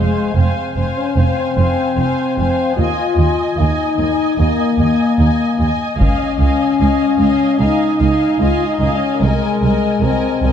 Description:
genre	cinematic, epic orchestral film score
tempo	75 BPM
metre	4/4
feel	straight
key	F minor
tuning	A4 = 440 Hz
part	warm symphonic violin section	melody	0.0-10.5 s	Ab5	-28 LUFS	left 2 dB	none
part	rich symphonic violin section	second line	0.0-10.5 s	Eb5 to Ab5	-26 LUFS	left 4 dB	none
part	warm symphonic viola section	accompaniment	0.0-10.5 s	Bb4 to Eb5	-24 LUFS	right 2 dB	none
part	warm French horn section	sustained chords	0.0-10.5 s	Ab3 to F4	-17 LUFS	left 4 dB	none
part	warm chamber double bass section	bass	0.0-10.5 s	F1 to Eb2	-20 LUFS	right 2 dB	none
part	warm symphonic cello section	bass	0.0-10.5 s	C2 to F2	-20 LUFS	right 2 dB	none
part	taiko ensemble	drums	6.0-7.6 s	none	-20 LUFS	equal	none
room	wet scoring stage reverb, RT60 2.0 s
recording	dark, warm production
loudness	-13 LUFS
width	side -8 dB against mid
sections	0.0-10.5 A section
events	band accent 0.0-0.4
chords	0.0 Fm; 2.8 Ebsus4; 6.0 Dbadd9; 9.2 Abadd9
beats	0.37 1.17 1.98 | 2.79 3.59 4.39 5.20 | 6.00 6.81 7.61 8.41 | 9.22 10.02

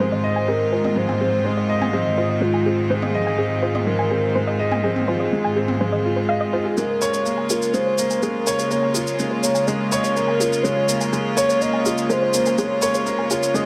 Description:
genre	piano and strings electronica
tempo	124 BPM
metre	4/4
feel	straight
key	Bb minor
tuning	A4 = 440 Hz
part	warm velvety synth lead	melody	0.0-13.7 s	F4 to Eb5	-26 LUFS	equal	chorus
part	bright chamber string section	sustained chords	0.0-13.7 s	Db3 to F4	-30 LUFS	equal	none
part	soft round pluck	arpeggios	0.0-13.6 s	Ab4 to Ab5	-31 LUFS	equal	chorus, cassette tape, tape echo
part	warm upright piano	riff	0.0-13.7 s	Ab3 to Eb5	-25 LUFS	equal	tape echo
part	rich chamber cello section	bass	0.0-6.7 s	Ab2	-29 LUFS	equal	none
part	electronic toms and shaker	drums	0.8-13.6 s	none	-30 LUFS	equal	high-pass filter on toms, low-pass filter on toms, high-pass filter on perc, low-pass filter on perc, high-pass filter on room, low-pass filter on room
room	moderate huge ambient reverb, RT60 4.3 s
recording	none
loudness	-21 LUFS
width	mono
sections	0.0-6.8 A section; 6.8-13.7 B section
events	filter sweep on drum 0.0-6.8; filter sweep on synth arpeggio sound 0.0-6.8; build-up 6.8-13.7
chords	0.0 Fm7/Ab; 6.8 Bbm7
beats	0.00 0.48 | 0.97 1.45 1.94 2.42 | 2.90 3.39 3.87 4.36 | 4.84 5.32 5.81 6.29 | 6.78 7.26 7.74 8.23 | 8.71 9.20 9.68 10.16 | 10.65 11.13 11.61 12.10 | 12.58 13.07 13.55

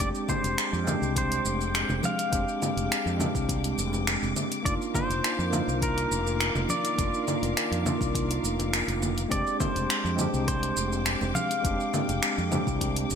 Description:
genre	sunset chillout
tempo	103 BPM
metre	4/4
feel	straight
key	F dorian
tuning	A4 = 440 Hz
part	pedal steel guitar	melody	0.0-13.1 s	Bb4 to F5	-32 LUFS	equal	digital delay
part	tine electric piano	accompaniment	0.0-13.2 s	Ab3 to G4	-31 LUFS	equal	medium tremolo, auto-pan, digital delay
part	rich studio string section	sustained chords	0.0-13.2 s	Eb3 to D6	-37 LUFS	left 3 dB	none
part	fretless electric bass	bass	0.0-13.2 s	F1 to F2	-30 LUFS	equal	lush chorus
part	deep house drum kit	drums	0.0-13.2 s	congas, finger snaps, hi-hat, shaker	-30 LUFS	left 1 dB	gated reverb
part	electronic kick drum	drums	0.0-12.9 s	none	-32 LUFS	equal	none
part	congas	percussion	1.9-12.6 s	none	-37 LUFS	left 1 dB	none
room	moderate plate reverb, RT60 3.1 s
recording	bright 1980s-style digital production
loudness	-24 LUFS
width	side -7 dB against mid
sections	0.0-13.2 A section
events	none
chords	0.0 Fm69; 4.7 Cm11/F; 9.3 Fm69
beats	0.58 1.16 1.74 | 2.32 2.91 3.49 4.07 | 4.65 5.24 5.82 6.40 | 6.98 7.57 8.15 8.73 | 9.31 9.90 10.48 11.06 | 11.64 12.23 12.81

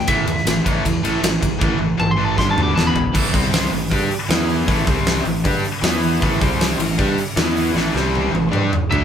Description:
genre	hard rock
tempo	156 BPM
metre	4/4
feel	straight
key	A minor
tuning	A4 = 440 Hz
part	lightly driven lead guitar	melody	0.0-3.1, 8.9-9.0 s	E5 to D6	-22 LUFS	left 1 dB	none
part	overdriven semi-hollow guitar	riff	0.0-9.0 s	E2 to G4	-22 LUFS	right 3 dB	none
part	tight distorted guitar	riff	0.0-9.0 s	E2 to G4	-24 LUFS	left 5 dB	distortion
part	modern bright fingered electric bass	bass	0.0-9.0 s	E1 to G2	-25 LUFS	equal	none
part	huge arena drum kit	drums	0.1-9.0 s	crash cymbal, hi-hat, kick drum, ride cymbal, snare drum, toms	-20 LUFS	equal	none
room	moderate studio reverb, RT60 0.5 s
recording	band playing live in one room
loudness	-16 LUFS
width	side -8 dB against mid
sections	0.0-3.1 A section; 3.1-9.0 B section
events	lead electric guitar solo 0.0-3.1; drum fill 1.6-3.1, 7.8-9.0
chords	0.1 A5; 2.4 G5; 2.8 E5; 3.1 A5; 3.3 C5; 3.7 A5; 4.3 E5; 4.7 A5; 4.9 C5; 5.3 A5; 5.8 E5; 6.2 A5; 6.4 C5; 6.8 A5; 7.4 E5; 7.8 A5; 8.0 C5; 8.3 A5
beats	| 0.07 0.45 0.84 1.22 | 1.60 1.99 2.37 2.76 | 3.14 3.52 3.91 4.29 | 4.68 5.06 5.45 5.83 | 6.22 6.60 6.99 7.38 | 7.76 8.15 8.53 8.92

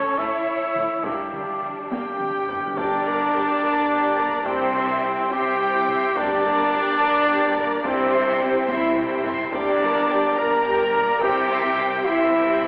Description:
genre	cinematic, epic orchestral film score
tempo	71 BPM (dotted quarters)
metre	6/8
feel	straight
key	G dorian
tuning	A4 = 441 Hz
part	warm symphonic violin section	second line	0.0-12.7 s	D4 to C6	-32 LUFS	equal	none
part	warm symphonic viola section	accompaniment	0.0-12.7 s	G3 to Bb4	-32 LUFS	equal	none
part	warm French horn section	sustained chords	0.0-12.7 s	G3 to Bb4	-27 LUFS	equal	none
part	dark trumpet	stabs	0.0-12.7 s	C4 to E5	-26 LUFS	equal	none
part	warm symphonic violin section	melody	0.2-12.7 s	G3 to Bb5	-33 LUFS	equal	none
part	rich symphonic double bass section	bass	0.2-12.7 s	G1 to C2	-40 LUFS	equal	none
part	warm symphonic cello section	bass	0.2-12.7 s	G2 to C3	-35 LUFS	equal	none
part	taiko ensemble	drums	0.2-12.7 s	none	-39 LUFS	equal	none
part	timpani	percussion	1.1-2.7, 6.2-7.0 s	G2	-42 LUFS	equal	none
part	sub drop	sound effects	3.4-4.5 s	none	barely audible	none	none
room	wet church reverb, RT60 3.0 s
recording	recorded in a church or concert hall, telephone sound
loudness	-21 LUFS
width	mono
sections	0.0-2.8 A section; 2.8-12.7 B section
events	timpani fill 1.1-2.8; drum fill 1.9-2.8, 8.7-9.5; impact 2.8-4.5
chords	0.0 A; 1.1 Gm; 4.5 C; 6.2 Gm; 7.9 C; 9.5 Gm; 11.2 C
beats	0.20 | 1.05 1.92 | 2.77 3.62 | 4.47 5.33 | 6.17 7.02 | 7.85 8.69 | 9.53 10.38 | 11.22 12.06

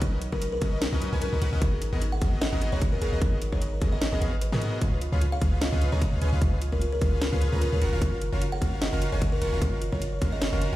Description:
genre	future bass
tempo	150 BPM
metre	4/4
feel	swing 55% on 16ths, half-time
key	F# major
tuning	A4 = 445 Hz
part	thumb-piano-like synth pluck	arpeggios	0.0-10.8 s	D#4 to F#5	-39 LUFS	right 4 dB	chorus, sidechain pumping, dub echo
part	big bright polysynth	riff	0.0-10.8 s	B3 to A#5	-34 LUFS	equal	sidechain pumping
part	warm 808-style bass	bass	0.0-10.8 s	F#1 to G#2	-27 LUFS	equal	sidechain pumping
part	electronic kick drum	drums	0.0-10.3 s	none	-26 LUFS	equal	small room ambience
part	trap drum kit	drums	0.0-10.7 s	hi-hat, snare drum	-33 LUFS	left 1 dB	small room ambience
part	buzzing kalimba	melody	0.3-10.8 s	A#4 to F#5	-34 LUFS	left 1 dB	sidechain pumping, ping-pong delay
room	little or no reverb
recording	played on a big sound system in a bare room, large studio reverb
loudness	-24 LUFS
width	side -15 dB against mid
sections	0.0-10.8 A section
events	none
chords	0.0 Bmaj9; 1.6 G#m9; 4.8 C#7; 7.8 F#maj7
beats	| 0.01 0.41 0.81 1.22 | 1.61 2.02 2.42 2.81 | 3.21 3.62 4.01 4.42 | 4.82 5.21 5.62 6.01 | 6.42 6.82 7.21 7.62 | 8.02 8.41 8.81 9.21 | 9.62 10.02 10.41

